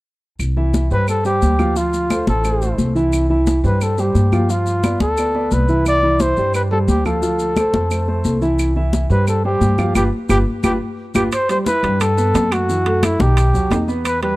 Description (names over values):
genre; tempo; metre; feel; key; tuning
Afro-Cuban jazz; 176 BPM; 4/4; straight; C major; A4 = 439 Hz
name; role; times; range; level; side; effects
upright bass; bass; 0.4-14.4 s; G1 to G2; -19 LUFS; equal; none
claves; percussion; 0.4-14.2 s; none; -29 LUFS; right 6 dB; none
congas; percussion; 0.4-14.4 s; none; -22 LUFS; left 2 dB; none
maracas; percussion; 0.4-14.2 s; none; -34 LUFS; left 7 dB; none
dark concert grand piano; accompaniment; 0.6-14.4 s; D#3 to F5; -21 LUFS; right 1 dB; none
breathy trumpet; melody; 0.9-14.4 s; E4 to D5; -20 LUFS; equal; none
timbales; percussion; 11.3-14.4 s; none; -26 LUFS; right 6 dB; none
room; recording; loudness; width
little or no reverb; dry, close 1970s-style studio recording; -15 LUFS; side -19 dB against mid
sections
0.4-11.3 A section; 11.3-14.4 B section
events
band accent 10.0-11.3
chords
0.4 Cadd9; 1.8 Dm7; 3.1 C; 4.5 G7; 5.9 Cadd9; 7.2 Dm7; 8.6 C; 10.0 G7; 11.3 A7sus2; 12.7 B7b13; 13.4 B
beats
| 0.40 0.74 1.08 1.42 | 1.76 2.11 2.45 2.79 | 3.13 3.47 3.81 4.15 | 4.50 4.84 5.18 5.52 | 5.86 6.20 6.54 6.88 | 7.23 7.57 7.91 8.25 | 8.59 8.93 9.27 9.61 | 9.96 10.30 10.64 10.98 | 11.32 11.66 12.00 12.34 | 12.69 13.03 13.37 13.71 | 14.05